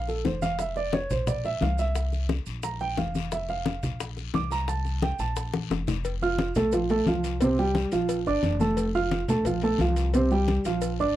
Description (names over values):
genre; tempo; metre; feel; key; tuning
latin, Cuban son and guajira; 176 BPM; 4/4; straight; unclear; A4 = 440 Hz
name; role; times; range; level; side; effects
dark baby grand piano; arpeggios; 0.0-11.2 s; C3 to F6; -26 LUFS; right 2 dB; none
upright bass; bass; 0.0-11.2 s; F1 to C2; -30 LUFS; equal; none
bongos and cowbell; percussion; 0.1-11.0 s; none; -35 LUFS; left 8 dB; none
congas; percussion; 0.1-11.2 s; none; -30 LUFS; left 2 dB; none
maracas; percussion; 0.1-11.2 s; none; -45 LUFS; right 24 dB; none
guiro; percussion; 0.3-11.2 s; none; -43 LUFS; left 23 dB; none
room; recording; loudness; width
light reverb; dry, close 1970s-style studio recording; -24 LUFS; side -13 dB against mid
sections
0.0-6.0 A section; 6.0-11.2 B section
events
grand piano solo 0.0-6.0; drum fill 5.5-6.0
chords
0.0 Bb5; 1.3 Bbadd9; 2.6 Bb5; 4.0 Bbadd9; 5.4 Bb5; 7.4 C5; 8.1 Bbmaj7; 8.8 F; 9.5 Bb5; 10.1 C5